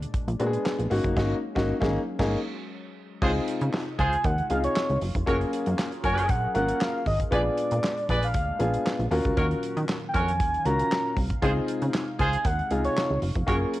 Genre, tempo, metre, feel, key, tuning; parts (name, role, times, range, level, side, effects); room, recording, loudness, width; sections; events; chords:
early-eighties boogie funk; 117 BPM; 4/4; straight; Db major; A4 = 441 Hz
warm analog pad; sustained chords; 0.0-13.8 s; Bb2 to F5; -38 LUFS; equal; chorus
plucky analog bass; bass; 0.0-13.7 s; F1 to Eb3; -27 LUFS; equal
damped 70s drum kit; drums; 0.0-13.8 s; crash cymbal, handclaps, hi-hat, kick drum, snare drum; -30 LUFS; equal
clear baby grand piano; accompaniment; 0.4-13.8 s; C3 to Bb4; -28 LUFS; left 2 dB
clear horn section; second line; 3.2-13.6 s; F4 to D5; -30 LUFS; right 1 dB
expressive synth lead; melody; 4.0-13.2 s; Db5 to Bb5; -28 LUFS; equal; chorus, cassette tape
small room ambience; home recording on cassette; -23 LUFS; side -16 dB against mid
0.0-3.2 A section; 3.2-13.8 B section
band accent 1.2-3.2
0.0 Bb7b9; 0.9 Ab9sus4; 3.2 Dbmaj9; 5.3 Gbmaj7; 7.3 Bb7b9; 9.1 Ebm9; 11.4 Dbmaj9